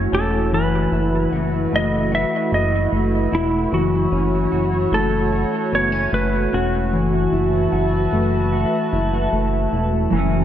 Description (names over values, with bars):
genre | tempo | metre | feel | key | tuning
dream pop | 75 BPM | 4/4 | straight | unclear | A4 = 437 Hz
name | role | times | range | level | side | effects
warbly tape-like pad | sustained chords | 0.0-10.4 s | A3 to C#6 | -24 LUFS | right 2 dB | chorus, built-in reverb
mellow electric guitar | arpeggios | 0.0-10.4 s | E3 to F#4 | -22 LUFS | left 3 dB | analog chorus, dub echo
chorused synth bass | bass | 0.0-10.4 s | E1 to F#1 | -22 LUFS | right 1 dB | none
clean lap steel guitar | melody | 0.1-9.3 s | E4 to E5 | -23 LUFS | equal | dub echo
mellow electric guitar | accompaniment | 10.1-10.4 s | F#2 to F#4 | -21 LUFS | right 5 dB | harmonic tremolo, lush chorus, dub echo
room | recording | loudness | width
moderate spring reverb, RT60 2.4 s | echo-heavy mix | -17 LUFS | side -10 dB against mid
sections
0.0-10.1 A section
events
none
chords
0.0 F#m7; 0.5 B7sus4/F#; 3.7 F#m7; 6.9 B7sus4/F#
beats
| 0.53 1.33 2.13 2.93 | 3.73 4.53 5.33 6.13 | 6.93 7.73 8.53 9.33 | 10.13